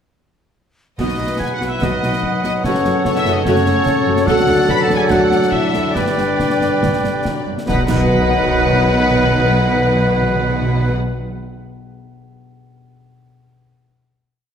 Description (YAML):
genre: cinematic, heroic adventure film score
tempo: 144 BPM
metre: 4/4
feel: straight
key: B mixolydian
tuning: A4 = 440 Hz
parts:
  - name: rich symphonic violin section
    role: melody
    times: 1.0-10.9 s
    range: B4 to B5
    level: -23 LUFS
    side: left 2 dB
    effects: none
  - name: clear oboe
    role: second line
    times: 1.0-10.9 s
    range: B4 to B5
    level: -25 LUFS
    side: right 1 dB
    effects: none
  - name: dark clarinet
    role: second line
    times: 1.0-10.9 s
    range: A4 to D#5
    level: -27 LUFS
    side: equal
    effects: none
  - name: hollow concert flute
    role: second line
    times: 1.0-10.9 s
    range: F#5 to G5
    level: -26 LUFS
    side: left 1 dB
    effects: none
  - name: warm studio violin section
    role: second line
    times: 1.0-10.9 s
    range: B4 to G5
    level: -27 LUFS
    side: left 2 dB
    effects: none
  - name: rich symphonic viola section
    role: accompaniment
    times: 1.0-10.9 s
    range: F#3 to B4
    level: -25 LUFS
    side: right 1 dB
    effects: none
  - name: warm French horn section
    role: sustained chords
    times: 1.0-10.7 s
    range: B3 to B4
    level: -22 LUFS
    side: left 3 dB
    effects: none
  - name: warm trombone section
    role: sustained chords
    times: 1.0-10.7 s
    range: B2 to G3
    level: -24 LUFS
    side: right 3 dB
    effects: none
  - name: concert harp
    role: arpeggios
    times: 1.0-11.8 s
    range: F#2 to F#5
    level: -28 LUFS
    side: left 6 dB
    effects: none
  - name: bright trumpet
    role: stabs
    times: 1.0-10.9 s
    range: A4 to B4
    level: -24 LUFS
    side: right 2 dB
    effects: none
  - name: warm symphonic cello section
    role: bass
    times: 1.0-10.9 s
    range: D2 to B2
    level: -24 LUFS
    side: right 2 dB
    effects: none
  - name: warm symphonic double bass section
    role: bass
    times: 1.0-10.9 s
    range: F#1 to D2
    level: -24 LUFS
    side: right 2 dB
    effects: none
  - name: concert snare drum, clash cymbals and concert bass drum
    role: drums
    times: 1.0-8.0 s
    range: none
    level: -25 LUFS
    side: equal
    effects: none
  - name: timpani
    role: percussion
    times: 2.6-3.2, 7.7-10.9 s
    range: F#2 to B2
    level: -24 LUFS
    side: equal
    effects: none
room: wet scoring stage reverb, RT60 1.7 s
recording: none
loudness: -14 LUFS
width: side -8 dB against mid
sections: 1.0-7.7 theme; 7.7-11.0 final chord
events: none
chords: 1.0 B; 2.6 F#m; 4.3 D; 6.0 G; 7.7 B